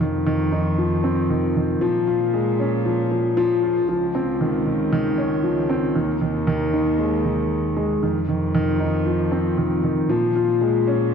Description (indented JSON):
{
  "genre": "piano and strings electronica",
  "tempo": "116 BPM",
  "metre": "4/4",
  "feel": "straight",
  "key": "F minor",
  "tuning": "A4 = 441 Hz",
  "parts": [
    { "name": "dark grand piano", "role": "riff", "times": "0.0-11.1 s", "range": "Eb3 to F4", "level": "-20 LUFS", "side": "left 1 dB", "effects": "ping-pong delay" },
    { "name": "warm chamber cello section", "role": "bass", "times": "0.0-11.1 s", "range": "Db2 to Bb2", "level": "-25 LUFS", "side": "right 1 dB", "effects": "none" }
  ],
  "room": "moderate recital hall reverb, RT60 1.8 s",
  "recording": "dark, warm production",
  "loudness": "-19 LUFS",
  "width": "side -6 dB against mid",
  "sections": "0.0-11.1 A section",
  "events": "none",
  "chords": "0.0 F5; 1.8 Bbm7; 3.9 Dbmaj9; 6.0 Ebsus4; 8.0 F5; 10.1 Bbm7"
}